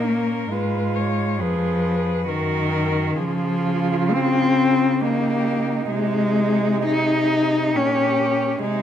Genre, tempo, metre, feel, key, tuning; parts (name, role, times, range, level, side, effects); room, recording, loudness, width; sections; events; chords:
classical, lyrical piece for cello ensemble; 67 BPM; 3/4; uneven beats, rubato; Ab major from 3.2 s; A4 = 440 Hz
muted cello; melody; 0.0-8.8 s; G4 to C#5; -30 LUFS; left 7 dB
muted cello; second line; 0.0-8.8 s; C#4 to Ab4; -28 LUFS; right 9 dB
muted cello; accompaniment; 0.0-8.8 s; D#3 to Eb4; -20 LUFS; left 2 dB
muted cello; bass; 0.0-8.8 s; F2 to Db3; -26 LUFS; right 3 dB
light reverb; close, detailed microphones; -18 LUFS; side -10 dB against mid
0.0-8.8 A section
0.0 F# (rootless); 0.5 Fdim/Ab; 2.3 F#; 3.2 Db; 5.0 Eb7/Db; 5.9 Ab/C; 7.8 Gdim/Bb